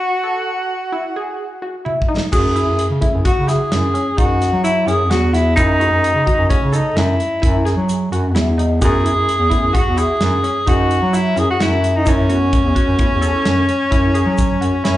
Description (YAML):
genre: progressive instrumental, band music in an uneven meter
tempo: 129 BPM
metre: 7/4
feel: straight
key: F# dorian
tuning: A4 = 440 Hz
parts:
  - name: breathy tenor saxophone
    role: melody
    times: 0.0-15.0 s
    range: C#4 to G#4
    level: -18 LUFS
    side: equal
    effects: slapback echo, digital delay
  - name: tight sequenced synth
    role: arpeggios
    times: 0.0-15.0 s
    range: C#4 to A4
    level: -25 LUFS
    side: left 1 dB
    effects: chorus, slapback echo
  - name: modern studio drum kit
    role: drums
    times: 1.9-15.0 s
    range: crash cymbal, hi-hat, kick drum, snare drum, toms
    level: -20 LUFS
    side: equal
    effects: none
  - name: tine electric piano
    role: accompaniment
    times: 2.3-13.3 s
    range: A3 to G#4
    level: -28 LUFS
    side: right 2 dB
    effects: slapback echo
  - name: warm bass clarinet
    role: bass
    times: 2.3-15.0 s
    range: E2 to F#3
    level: -18 LUFS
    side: equal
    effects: none
  - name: egg shaker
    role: percussion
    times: 2.3-14.6 s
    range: none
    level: -38 LUFS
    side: right 2 dB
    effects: none
room: light reverb, studio reverb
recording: live gig heard through the venue's PA, club reverb, nothing above 10.4 kHz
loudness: -14 LUFS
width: side -14 dB against mid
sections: 0.0-2.3 A section; 2.3-15.0 B section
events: break 0.0-2.3; drum fill 1.9-2.3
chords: 0.0 F#m7; 8.8 Aadd9